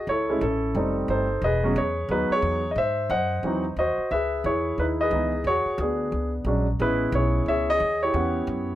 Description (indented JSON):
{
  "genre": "jazz piano trio",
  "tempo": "179 BPM",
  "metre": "4/4",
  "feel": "swing 63% on 8ths",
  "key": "unclear",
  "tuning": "A4 = 440 Hz",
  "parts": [
    { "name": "warm grand piano", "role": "melody", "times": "0.0-8.8 s", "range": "E3 to F#5", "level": "-23 LUFS", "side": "equal", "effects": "none" },
    { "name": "upright bass", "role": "bass", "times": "0.1-8.8 s", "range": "E1 to G#2", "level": "-29 LUFS", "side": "equal", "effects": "none" }
  ],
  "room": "light reverb",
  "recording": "none",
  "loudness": "-22 LUFS",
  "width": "side -13 dB against mid",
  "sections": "0.0-8.8 A section",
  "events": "none",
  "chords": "0.1 A; 0.8 F9; 1.4 E6; 2.8 G#7b13; 4.1 C#m9; 5.5 E13; 6.8 Amaj7; 8.1 A13 (rootless)",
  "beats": "| 0.08 0.41 0.75 1.09 | 1.42 1.76 2.10 2.43 | 2.77 3.10 3.44 3.77 | 4.11 4.45 4.78 5.12 | 5.45 5.79 6.12 6.46 | 6.79 7.13 7.47 7.80 | 8.14 8.47"
}